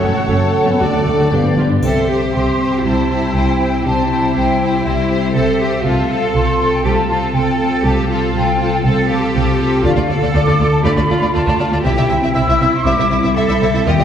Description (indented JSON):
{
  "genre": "cinematic, heroic adventure film score",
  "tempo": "120 BPM",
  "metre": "4/4",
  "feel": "straight",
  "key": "C major",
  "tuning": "A4 = 442 Hz",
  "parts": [
    { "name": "warm symphonic violin section", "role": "melody", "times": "0.0-14.0 s", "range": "A4 to E5", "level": "-24 LUFS", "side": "left 2 dB", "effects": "none" },
    { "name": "clear oboe", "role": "second line", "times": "0.0-1.5 s", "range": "C#5 to D5", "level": "-28 LUFS", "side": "equal", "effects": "none" },
    { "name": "dark clarinet", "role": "second line", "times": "0.0-1.8 s", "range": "A4 to B4", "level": "-25 LUFS", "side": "left 1 dB", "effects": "none" },
    { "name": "large flute ensemble", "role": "second line", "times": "0.0-14.0 s", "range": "D5 to E6", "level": "-20 LUFS", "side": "left 1 dB", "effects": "none" },
    { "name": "rich symphonic violin section", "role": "second line", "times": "0.0-14.0 s", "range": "E4 to A4", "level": "-26 LUFS", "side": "left 1 dB", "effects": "none" },
    { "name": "rich symphonic viola section", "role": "accompaniment", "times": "0.0-14.0 s", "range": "A3 to F#4", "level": "-22 LUFS", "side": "right 1 dB", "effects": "none" },
    { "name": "clear trombone section", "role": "sustained chords", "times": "0.0-1.6 s", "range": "F3 to D4", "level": "-26 LUFS", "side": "right 2 dB", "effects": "none" },
    { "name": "dark French horn section", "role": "sustained chords", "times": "0.0-14.0 s", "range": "G3 to F4", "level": "-26 LUFS", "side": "equal", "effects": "none" },
    { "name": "concert harp", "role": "arpeggios", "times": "0.0-14.0 s", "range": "F#2 to A4", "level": "-21 LUFS", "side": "left 4 dB", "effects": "none" },
    { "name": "mellow trumpet section", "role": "stabs", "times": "0.0-1.8 s", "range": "A4 to B4", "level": "-24 LUFS", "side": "right 2 dB", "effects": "none" },
    { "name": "rich symphonic cello section", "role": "bass", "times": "0.0-14.0 s", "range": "D2 to A4", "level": "-20 LUFS", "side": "right 2 dB", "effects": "none" },
    { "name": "warm studio double bass section", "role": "bass", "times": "0.0-14.0 s", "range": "F#1 to Eb2", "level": "-19 LUFS", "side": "right 2 dB", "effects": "none" },
    { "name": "triangle", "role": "percussion", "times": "1.8-2.8 s", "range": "none", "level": "-40 LUFS", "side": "left 2 dB", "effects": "none" }
  ],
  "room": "wet scoring stage reverb, RT60 1.6 s",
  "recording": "heard from further back in the room",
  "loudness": "-13 LUFS",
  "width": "side -8 dB against mid",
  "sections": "0.0-1.8 A section; 1.8-14.0 B section",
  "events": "none",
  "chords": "0.0 F#m; 0.8 D; 1.3 G7; 1.8 C; 5.8 F/C; 9.8 Dm; 11.8 C",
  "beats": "0.29 0.80 1.32 | 1.83 2.34 2.84 3.34 | 3.85 4.35 4.85 5.35 | 5.85 6.35 6.85 7.35 | 7.85 8.35 8.84 9.35 | 9.84 10.34 10.85 11.35 | 11.85 12.35 12.86 13.36 | 13.86"
}